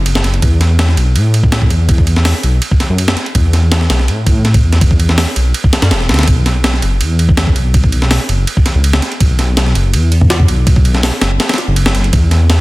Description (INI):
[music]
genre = drum and bass, jungle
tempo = 164 BPM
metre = 4/4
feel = straight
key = unclear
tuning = A4 = 440 Hz
[part]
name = dark detuned saw bass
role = bass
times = 0.0-12.6 s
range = E1 to A2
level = -12 LUFS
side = equal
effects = tube saturation
[part]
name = breakbeat sampler-style drum kit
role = drums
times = 0.1-12.6 s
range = hi-hat, kick drum, ride cymbal, snare drum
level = -13 LUFS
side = equal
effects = none
[sound]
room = digital ambience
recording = dense, heavily limited modern master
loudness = -9 LUFS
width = side -20 dB against mid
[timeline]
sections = 0.0-12.6 A section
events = none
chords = none